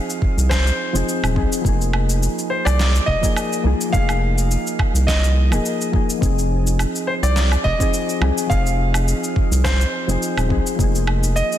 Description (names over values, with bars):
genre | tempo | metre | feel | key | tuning
sunset chillout | 105 BPM | 4/4 | swing 54% on 16ths | F minor | A4 = 440 Hz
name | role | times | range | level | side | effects
clear concert grand piano | melody | 0.0-11.6 s | C5 to F5 | -25 LUFS | equal | tape echo, shimmer reverb
soft electric-piano-like synth keys | accompaniment | 0.0-11.6 s | F3 to Ab4 | -24 LUFS | moving between left 6 dB and right 6 dB | chorus, auto-pan, tape echo, shimmer reverb
electronic cabasa, snare drum and woodblock | drums | 0.1-11.6 s | none | -26 LUFS | equal | small room ambience
electronic kick drum | drums | 0.2-10.9 s | none | -21 LUFS | equal | small room ambience
round analog bass | bass | 0.4-11.4 s | Eb1 to C2 | -18 LUFS | equal | none
room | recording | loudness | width
light reverb | dense, heavily limited modern master | -16 LUFS | side -12 dB against mid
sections
0.0-11.6 A section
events
none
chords
0.0 Fm7; 1.6 Bb7sus4/F; 6.2 Fm7; 10.8 Bb7sus4/F